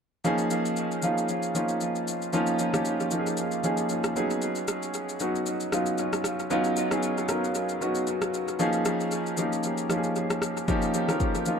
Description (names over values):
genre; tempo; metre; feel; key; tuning
amapiano; 115 BPM; 4/4; swing 55% on 16ths; unclear; A4 = 440 Hz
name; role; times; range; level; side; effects
warm grand piano; accompaniment; 0.2-11.6 s; F3 to Bb4; -25 LUFS; equal; dub echo
deep house drum kit; drums; 0.2-11.6 s; kick drum, rim click, shaker; -33 LUFS; left 1 dB; overdrive, dub echo
room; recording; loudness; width
moderate spring reverb, RT60 1.9 s; echo-heavy mix; -25 LUFS; side -6 dB against mid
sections
0.2-11.6 A section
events
none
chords
0.2 Eb9sus4; 4.2 Db9sus4; 8.6 Eb9sus4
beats
| 0.24 0.77 1.29 1.81 | 2.33 2.85 3.38 3.90 | 4.42 4.94 5.46 5.99 | 6.51 7.03 7.55 8.07 | 8.59 9.12 9.64 10.16 | 10.68 11.20